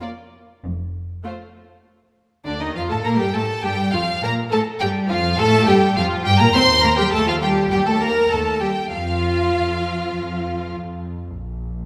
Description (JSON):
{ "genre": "quick classical-period movement for string orchestra", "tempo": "101 BPM", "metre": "4/4", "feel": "straight", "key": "Bb major", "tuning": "A4 = 438 Hz", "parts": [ { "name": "rich studio violin section", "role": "melody", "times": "0.0-10.7 s", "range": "C5 to C6", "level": "-24 LUFS", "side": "equal", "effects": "none" }, { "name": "warm studio violin section", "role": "second line", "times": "0.0-10.7 s", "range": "D4 to C5", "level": "-26 LUFS", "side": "equal", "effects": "none" }, { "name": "rich studio viola section", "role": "accompaniment", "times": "0.0-10.7 s", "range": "A3 to C5", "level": "-27 LUFS", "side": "equal", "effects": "none" }, { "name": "warm studio cello section", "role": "bass", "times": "0.6-10.7 s", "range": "F2 to C4", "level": "-26 LUFS", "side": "equal", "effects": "none" }, { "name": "warm studio double bass section", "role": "bass", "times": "0.6-11.9 s", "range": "F1 to Bb2", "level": "-27 LUFS", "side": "equal", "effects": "none" } ], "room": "wet scoring stage reverb, RT60 1.8 s", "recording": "none", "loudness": "-19 LUFS", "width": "mono", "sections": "0.0-1.9 A section; 1.9-11.9 B section", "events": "none", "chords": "0.0 N.C.; 1.9 Bb; 4.2 Gm9; 6.5 Cm/Eb; 8.9 N.C." }